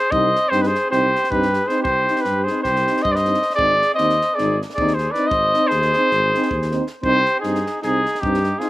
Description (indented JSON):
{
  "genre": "balkan folk, Balkan brass band",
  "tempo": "312 BPM (eighths)",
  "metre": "9/8",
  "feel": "straight",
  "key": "C harmonic minor",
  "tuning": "A4 = 439 Hz",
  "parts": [
    { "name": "mellow trumpet", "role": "melody", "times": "0.0-8.7 s", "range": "G4 to Eb5", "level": "-18 LUFS", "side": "equal", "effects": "slapback echo" },
    { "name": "warm flugelhorn", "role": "second line", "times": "0.0-8.7 s", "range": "Eb4 to C5", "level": "-27 LUFS", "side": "right 1 dB", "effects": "slapback echo" },
    { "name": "mellow French horn", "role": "accompaniment", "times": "0.1-8.7 s", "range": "Eb4", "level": "-27 LUFS", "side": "left 5 dB", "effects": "none" },
    { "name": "mellow euphonium", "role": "accompaniment", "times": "0.1-8.7 s", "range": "C4", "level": "-27 LUFS", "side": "right 6 dB", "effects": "slapback echo" },
    { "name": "dark tuba", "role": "bass", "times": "0.1-8.5 s", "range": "Ab1 to G2", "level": "-24 LUFS", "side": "equal", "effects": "none" },
    { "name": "compact cocktail drum kit", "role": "percussion", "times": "0.1-8.6 s", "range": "kick drum, snare drum", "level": "-34 LUFS", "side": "equal", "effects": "none" }
  ],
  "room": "little or no reverb",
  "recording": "recorded outdoors, with no room sound",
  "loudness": "-16 LUFS",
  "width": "side -17 dB against mid",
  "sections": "0.0-8.7 A section",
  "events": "none",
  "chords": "0.1 Cm; 3.6 Ab; 7.0 Cm",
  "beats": "| 0.12 0.31 0.50 0.69 0.89 1.08 1.27 1.46 1.66 | 1.85 2.04 2.23 2.43 2.62 2.81 3.00 3.19 3.39 | 3.58 3.77 3.96 4.16 4.35 4.54 4.73 4.92 5.12 | 5.31 5.50 5.69 5.88 6.08 6.27 6.46 6.65 6.84 | 7.04 7.23 7.42 7.61 7.80 7.99 8.18 8.38 8.57"
}